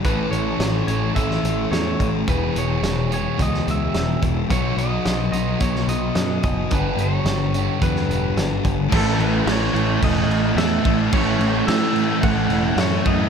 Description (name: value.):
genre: rock, shoegaze and dream pop.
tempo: 108 BPM.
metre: 4/4.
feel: straight.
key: unclear.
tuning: A4 = 440 Hz.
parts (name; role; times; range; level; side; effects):
electric guitar through a small old amp; melody; 0.0-13.3 s; A4 to F#5; -27 LUFS; equal; spring reverb, tape echo.
crunchy overdriven guitar; riff; 0.0-13.3 s; E2 to A4; -25 LUFS; right 14 dB; reverse reverb.
thick fuzz guitar; riff; 0.0-13.3 s; E2 to B3; -24 LUFS; left 10 dB; distortion, lush chorus.
growling picked electric bass; bass; 0.0-13.3 s; E1 to A2; -24 LUFS; right 1 dB; overdrive.
loose indie drum kit; drums; 0.0-13.2 s; crash cymbal, hi-hat, kick drum, snare drum; -24 LUFS; right 1 dB; none.
tight distorted guitar; riff; 8.9-13.3 s; A2 to A3; -27 LUFS; right 1 dB; distortion.
room: light reverb.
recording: none.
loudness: -18 LUFS.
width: side -7 dB against mid.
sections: 0.0-8.9 A section; 8.9-13.3 A section.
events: none.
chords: 0.0 A; 2.3 E; 4.5 B; 6.7 G; 8.9 A.